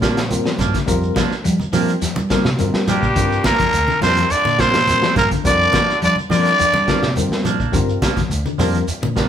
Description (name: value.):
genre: afrobeat.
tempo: 105 BPM.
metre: 4/4.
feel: straight.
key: G minor.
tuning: A4 = 439 Hz.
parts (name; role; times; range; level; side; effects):
tine electric piano; accompaniment; 0.0-9.3 s; G3 to Bb4; -24 LUFS; left 2 dB; medium stereo tremolo.
semi-hollow electric guitar; arpeggios; 0.0-9.2 s; D3 to G3; -26 LUFS; left 8 dB; none.
semi-hollow electric guitar; stabs; 0.0-9.3 s; F3 to D4; -26 LUFS; right 7 dB; none.
fingered electric bass; bass; 0.0-9.3 s; D2 to G3; -22 LUFS; equal; none.
crunchy breakbeat drum kit; drums; 0.0-9.3 s; hi-hat, kick drum, snare drum; -22 LUFS; equal; none.
shekere; percussion; 0.0-9.3 s; none; -29 LUFS; right 2 dB; none.
congas; percussion; 0.3-9.2 s; none; -27 LUFS; right 2 dB; none.
growling trumpet; melody; 2.9-7.1 s; G4 to D5; -16 LUFS; equal; none.
raspy baritone saxophone; second line; 2.9-7.1 s; G2 to D3; -28 LUFS; left 5 dB; none.
raspy tenor saxophone; second line; 2.9-7.1 s; G3 to D4; -29 LUFS; right 4 dB; none.
room: moderate large studio reverb, RT60 1.2 s.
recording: band playing live in one room.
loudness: -14 LUFS.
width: side -9 dB against mid.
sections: 0.0-9.3 A section.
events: none.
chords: 0.0 Gm7.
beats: 0.30 | 0.88 1.45 2.02 2.59 | 3.16 3.73 4.31 4.88 | 5.45 6.02 6.60 7.17 | 7.74 8.31 8.89.